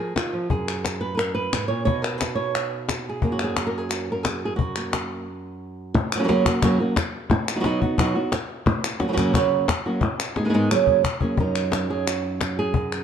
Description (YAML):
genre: flamenco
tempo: 176 BPM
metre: 4/4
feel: straight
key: F# major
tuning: A4 = 440 Hz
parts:
  - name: flamenco guitar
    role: melody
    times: 0.0-13.0 s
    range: F#2 to C#5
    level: -23 LUFS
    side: right 2 dB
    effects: none
  - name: cajon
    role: percussion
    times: 0.2-12.9 s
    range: none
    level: -26 LUFS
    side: left 3 dB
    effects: none
  - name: palmas hand claps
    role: percussion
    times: 0.2-13.0 s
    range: none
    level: -29 LUFS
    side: left 4 dB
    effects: none
room: moderate stone room reverb, RT60 1.4 s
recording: dark, warm production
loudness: -21 LUFS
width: side -8 dB against mid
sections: 0.0-5.9 A section; 5.9-11.4 B section; 11.4-13.0 C section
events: stop 5.3-5.9; drum fill 10.4-11.4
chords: 0.0 G#sus2; 0.5 F#; 1.9 Badd9; 3.2 F#; 7.3 B; 8.7 F#; 10.0 G#m; 10.7 F#add9; 11.4 Badd9/F# (rootless)